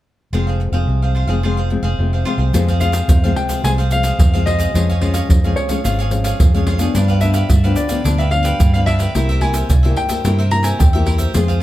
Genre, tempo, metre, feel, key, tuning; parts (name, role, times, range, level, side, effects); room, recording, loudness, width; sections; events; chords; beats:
samba and choro; 109 BPM; 4/4; straight; F minor; A4 = 438 Hz
cavaquinho; accompaniment; 0.3-11.6 s; D4 to F5; -26 LUFS; right 4 dB
nylon-string guitar; accompaniment; 0.3-11.6 s; F2 to Ab4; -22 LUFS; left 4 dB
vintage muted fingered electric bass; bass; 0.3-11.6 s; F1 to G2; -16 LUFS; equal
egg shaker, surdo and pandeiro; percussion; 2.5-11.6 s; -17 LUFS; right 1 dB
warm grand piano; melody; 2.8-11.2 s; Db5 to Bb5; -23 LUFS; left 1 dB
light reverb; -14 LUFS; side -15 dB against mid
0.3-2.5 A section; 2.5-11.6 B section
0.3 Fm; 4.7 Db/F; 6.9 G7; 9.1 C7
| 0.34 0.89 1.44 1.99 | 2.54 3.09 3.65 4.20 | 4.75 5.30 5.85 6.40 | 6.95 7.50 8.05 8.60 | 9.15 9.70 10.25 10.80 | 11.35